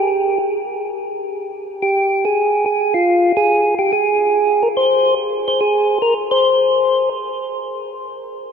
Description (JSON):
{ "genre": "jazz", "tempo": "143 BPM", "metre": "4/4", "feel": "swing 67% on 8ths", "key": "unclear", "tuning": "A4 = 440 Hz", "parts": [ { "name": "percussive tonewheel organ", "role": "solo", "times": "0.0-7.1 s", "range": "F4 to C5", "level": "-15 LUFS", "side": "equal", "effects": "slow rotary speaker" } ], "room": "wet cathedral reverb, RT60 7.2 s", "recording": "in a vast, echoing space", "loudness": "-14 LUFS", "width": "side -7 dB against mid", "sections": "0.0-8.5 A section", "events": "none", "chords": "none" }